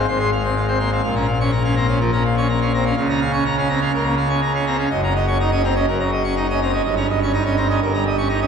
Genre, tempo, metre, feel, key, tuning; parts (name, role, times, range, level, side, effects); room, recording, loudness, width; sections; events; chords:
classical, organ toccata; 124 BPM; 4/4; straight; A4 = 442 Hz
pipe organ, full organ; solo; 0.0-8.5 s; Gb1 to Db6; -17 LUFS; equal
wet church reverb, RT60 3.5 s; heard from further back in the room; -17 LUFS; side -6 dB against mid
0.0-8.5 A section
0.0 Fm/Ab; 1.0 Bbm; 3.0 Bbm/Db; 4.9 Ebm7/Gb; 6.8 Eb7/G